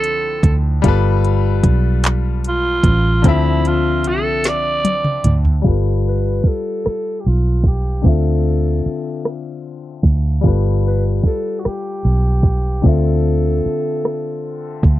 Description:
slow six-eight R&B; 50 BPM (dotted quarters); 6/8; straight; A4 = 440 Hz
breathy tenor saxophone; melody; 0.0-14.9 s; E4 to D5; -21 LUFS; right 2 dB; slapback echo
bright grand piano; accompaniment; 0.0-15.0 s; D3 to E5; -22 LUFS; left 9 dB
vintage muted fingered electric bass; bass; 0.0-15.0 s; G1 to D2; -16 LUFS; right 1 dB
smooth R&B drum kit; drums; 0.0-15.0 s; handclaps, hi-hat, kick drum, rim click, snare drum, toms; -15 LUFS; right 1 dB
little or no reverb; dry, close 1970s-style studio recording, low-pass filter; -14 LUFS; side -15 dB against mid
0.0-5.6 A section; 5.6-15.0 B section
drum fill 4.4-5.6; filter sweep 5.6-15.0
0.0 Dm9; 0.8 G9; 3.2 Dm9; 5.6 G9; 8.0 Dm9; 10.4 G9; 12.8 Dm9
| 0.84 2.04 | 3.24 4.44 | 5.64 6.84 | 8.04 9.24 | 10.44 11.64 | 12.84 14.04

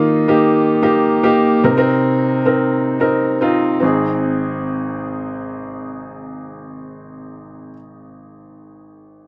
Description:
pop; 110 BPM; 4/4; straight; Ab major; A4 = 440 Hz
clear upright piano; accompaniment; 0.0-9.3 s; Ab1 to Bb4; -18 LUFS; equal
light reverb; dry, close 1970s-style studio recording; -16 LUFS; mono
0.0-3.8 A section; 3.8-8.2 B section
0.0 Eb; 1.6 Cm7; 3.8 Ab
0.01 0.55 1.10 | 1.64 2.19 2.73 3.28 | 3.82 4.37 4.92 5.46 | 6.01 6.55 7.10 7.65

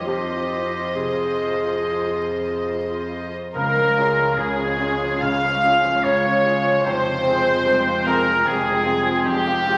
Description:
cinematic, emotional film score for orchestra; 68-76 BPM; 4/4; rubato; A4 = 441 Hz
rich symphonic violin section; second line; 0.0-9.8 s; G4 to F5; -25 LUFS; equal
bright baby grand piano; accompaniment; 0.0-9.8 s; F1 to Ab4; -31 LUFS; equal
dark symphonic viola section; accompaniment; 0.0-9.8 s; C3 to F4; -34 LUFS; equal
concert harp; arpeggios; 0.0-9.8 s; F2 to C6; -34 LUFS; equal
warm symphonic cello section; bass; 0.0-9.8 s; Db2 to F2; -35 LUFS; equal
clear clarinet; second line; 0.1-9.8 s; Ab3 to Ab4; -31 LUFS; equal
mellow hollow concert flute; second line; 3.5-9.8 s; F5 to G5; -32 LUFS; equal
dark chamber double bass section; bass; 3.5-9.8 s; F1 to Db2; -41 LUFS; equal
warm symphonic violin section; melody; 3.6-9.8 s; G4 to F5; -31 LUFS; equal
clear oboe; second line; 3.6-9.8 s; G4 to F5; -25 LUFS; equal
wet scoring stage reverb, RT60 1.9 s; vinyl crackle; -21 LUFS; mono
0.0-3.6 A section; 3.6-9.8 B section
0.1 Fm7; 3.6 Db; 6.9 Fmadd9
| 0.06 0.95 1.83 2.70 | 3.56 4.38 5.24 6.06 | 6.87 7.67 8.47 9.27

